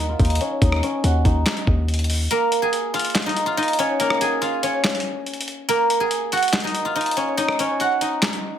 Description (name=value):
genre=hip hop, trap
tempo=142 BPM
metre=4/4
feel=half-time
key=unclear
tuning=A4 = 440 Hz
part: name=guzheng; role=melody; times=0.0-8.6 s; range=Bb3 to Ab5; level=-21 LUFS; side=equal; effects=low-pass filter, digital delay
part: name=hard-hitting 808-style bass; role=bass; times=0.0-2.3 s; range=Eb2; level=-20 LUFS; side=equal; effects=none
part: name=dusty soul sampler-style drum kit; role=drums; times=0.2-8.4 s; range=handclaps, hi-hat, kick drum, rim click, snare drum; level=-24 LUFS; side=equal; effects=none
room=light reverb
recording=none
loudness=-18 LUFS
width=side -9 dB against mid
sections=0.0-8.6 A section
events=filter sweep on guzheng 0.0-2.3; kick muted 2.3-8.6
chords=0.0 Ebm7; 2.3 Bbm7; 5.7 Ebm7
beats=0.20 | 0.62 1.04 1.46 1.89 | 2.31 2.73 3.15 3.58 | 4.00 4.42 4.84 5.26 | 5.69 6.11 6.53 6.96 | 7.38 7.80 8.22